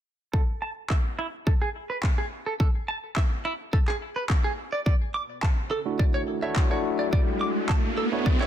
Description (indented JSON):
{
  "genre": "nu-disco, nu disco",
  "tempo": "106 BPM",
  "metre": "4/4",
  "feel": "straight",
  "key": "A major",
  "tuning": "A4 = 439 Hz",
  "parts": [
    { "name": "direct-recorded clean electric guitar", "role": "riff", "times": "0.3-8.5 s", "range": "E4 to D6", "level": "-31 LUFS", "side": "right 2 dB", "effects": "lush chorus, low-pass filter, ping-pong delay" },
    { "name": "electronic kick drum", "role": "drums", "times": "0.3-8.4 s", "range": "none", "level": "-23 LUFS", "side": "equal", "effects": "small room ambience" },
    { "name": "electronic handclaps", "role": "drums", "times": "0.9-8.5 s", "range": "none", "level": "-34 LUFS", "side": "equal", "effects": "small room ambience" },
    { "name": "riser", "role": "sound effects", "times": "5.8-8.5 s", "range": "none", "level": "-31 LUFS", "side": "right 1 dB", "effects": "none" },
    { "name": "barky tine electric piano", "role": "accompaniment", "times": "5.9-8.5 s", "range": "A3 to E5", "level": "-28 LUFS", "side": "moving between left 6 dB and right 7 dB", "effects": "auto-pan, sidechain pumping, ping-pong delay" }
  ],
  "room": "light reverb, digital ambience",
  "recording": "dense, heavily limited modern master",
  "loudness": "-24 LUFS",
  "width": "side -10 dB against mid",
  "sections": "0.3-8.5 A section",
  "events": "riser 5.8-8.5",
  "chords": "0.3 Asus2; 4.6 Dmaj7"
}